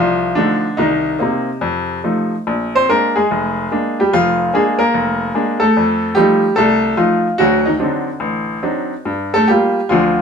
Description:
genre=solo jazz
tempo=145 BPM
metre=4/4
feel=swing 66% on 8ths, rubato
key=F mixolydian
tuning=A4 = 440 Hz
part: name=bright upright piano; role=solo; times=0.0-10.2 s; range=F1 to C5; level=-13 LUFS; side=equal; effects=none
room=wet small room ambience, RT60 0.5 s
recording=band playing live in one room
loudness=-13 LUFS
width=side -6 dB against mid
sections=0.0-10.2 A section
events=none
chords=0.0 F7; 0.8 Cm7; 1.6 F7; 2.5 Bb7; 5.8 F7; 7.4 D7b9; 9.1 Gm7

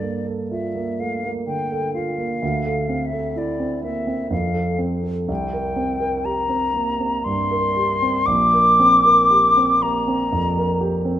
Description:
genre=classical, impressionist duo for flute and grand piano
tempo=58-64 BPM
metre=3/4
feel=rubato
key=G dorian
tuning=A4 = 441 Hz
part: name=hollow concert flute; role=melody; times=0.0-10.8 s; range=D5 to D6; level=-19 LUFS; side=left 1 dB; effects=none
part: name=warm grand piano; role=accompaniment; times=0.0-11.2 s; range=Bb1 to Bb4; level=-22 LUFS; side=right 2 dB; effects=none
room=wet recital hall reverb, RT60 1.6 s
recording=dark, warm production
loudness=-17 LUFS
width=side -11 dB against mid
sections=0.0-11.2 A section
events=none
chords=0.0 Gm9; 2.4 Dsus2; 4.3 F; 5.3 C5; 8.3 Bb69

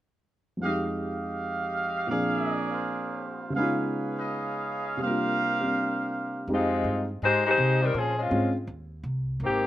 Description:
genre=jazz, big band swing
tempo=164 BPM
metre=4/4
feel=swing 64% on 8ths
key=F dorian, F minor from 6.5 s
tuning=A4 = 441 Hz
part: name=dark concert grand piano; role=accompaniment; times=0.6-8.5 s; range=F2 to Ab4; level=-29 LUFS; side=equal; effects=none
part: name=clear trumpet section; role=stabs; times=0.6-6.5 s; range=G4 to F5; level=-29 LUFS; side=right 2 dB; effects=slapback echo
part: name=dark saxophone section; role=melody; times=6.5-9.7 s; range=Eb3 to C5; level=-24 LUFS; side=left 2 dB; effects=none
part: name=upright bass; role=bass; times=6.5-9.7 s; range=Ab1 to C3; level=-30 LUFS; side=equal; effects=none
room=little or no reverb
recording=recorded outdoors, with no room sound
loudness=-25 LUFS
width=side -13 dB against mid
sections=0.6-6.5 A section; 6.5-9.7 B section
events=none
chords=0.6 Fm9; 2.1 Bb7; 3.6 Db7; 5.0 C7sus4; 6.5 Fm9; 7.9 Bbm9; 8.7 Cm

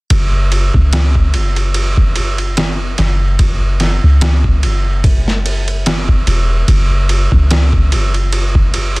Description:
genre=trip hop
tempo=73 BPM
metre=4/4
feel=swing 55% on 16ths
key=unclear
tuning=A4 = 441 Hz
part: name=soft 808-style bass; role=bass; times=0.1-9.0 s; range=E1 to C#2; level=-13 LUFS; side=equal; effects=none
part: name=trip hop sampler-style drum kit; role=drums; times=0.1-9.0 s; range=kick drum, ride cymbal, snare drum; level=-14 LUFS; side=equal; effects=none
room=little or no reverb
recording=dense, heavily limited modern master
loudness=-11 LUFS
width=side -24 dB against mid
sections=0.1-9.0 A section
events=none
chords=none

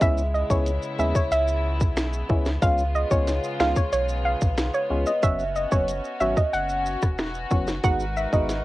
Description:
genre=dancehall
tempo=92 BPM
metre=4/4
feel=straight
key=unclear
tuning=A4 = 439 Hz
part: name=soft round pluck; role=melody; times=0.0-8.5 s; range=C#5 to F#5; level=-25 LUFS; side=right 1 dB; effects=chorus, cassette tape
part: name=percussive organ stab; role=accompaniment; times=0.0-8.5 s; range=F#3 to F#4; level=-27 LUFS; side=left 2 dB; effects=chorus, cassette tape
part: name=warm studio string section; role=sustained chords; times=0.0-8.6 s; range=C#3 to B4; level=-33 LUFS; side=left 1 dB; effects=sidechain pumping, cassette tape
part: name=saturated sub bass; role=bass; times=0.0-8.6 s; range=E1 to D#2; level=-28 LUFS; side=equal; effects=none
part: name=island pop drum kit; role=drums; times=0.0-8.6 s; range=finger snaps, hi-hat, kick drum, rim click, snare drum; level=-23 LUFS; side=equal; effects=cassette tape
part: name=maracas and timbales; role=percussion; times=0.0-8.6 s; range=none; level=-40 LUFS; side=right 4 dB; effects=none
room=light reverb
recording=home recording on cassette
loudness=-21 LUFS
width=side -17 dB against mid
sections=0.0-8.6 A section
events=none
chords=0.0 C#m7; 2.6 C#7; 5.2 F#sus4; 7.8 G#m7

